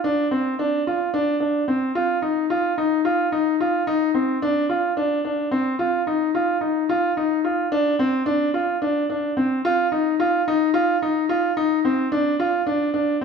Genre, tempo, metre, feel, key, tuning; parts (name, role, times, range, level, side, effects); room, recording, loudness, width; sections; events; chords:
progressive instrumental, progressive; 219 BPM (eighths); 7/8; straight; A4 = 440 Hz
clear concert grand piano; solo; 0.0-13.2 s; C4 to F4; -19 LUFS; equal
wet recital hall reverb, RT60 1.8 s; recorded in a church or concert hall; -19 LUFS; side -6 dB against mid
0.0-13.2 A section